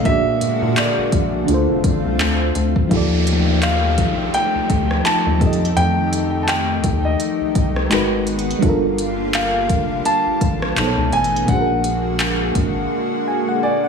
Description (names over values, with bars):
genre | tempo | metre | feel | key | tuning
contemporary R&B | 84 BPM | 4/4 | swing 58% on 16ths | unclear | A4 = 439 Hz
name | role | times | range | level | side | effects
FM electric piano with auto-pan | accompaniment | 0.0-13.9 s | Bb2 to Ab5 | -22 LUFS | right 2 dB | none
lush unison pad | sustained chords | 0.0-13.9 s | C#3 to G4 | -23 LUFS | left 2 dB | chorus
warm concert grand piano | melody | 0.1-13.9 s | D5 to A5 | -22 LUFS | equal | digital delay
rubbery square bass | bass | 0.1-12.9 s | F1 to Bb2 | -22 LUFS | left 1 dB | none
smooth R&B drum kit | drums | 0.1-12.7 s | handclaps, hi-hat, kick drum, rim click | -21 LUFS | left 1 dB | none
downlifter | sound effects | 2.9-8.6 s | none | -27 LUFS | equal | none
room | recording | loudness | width
light reverb | small room ambience | -16 LUFS | side -6 dB against mid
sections
0.0-2.9 A section; 2.9-13.9 B section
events
FM electric piano fill 12.9-13.9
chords
0.1 Bbaug7; 1.5 Dm7; 2.9 Ebmaj9#11; 5.4 F9; 7.9 Abm7; 8.6 Gm7; 10.8 B9; 11.5 Bbaug7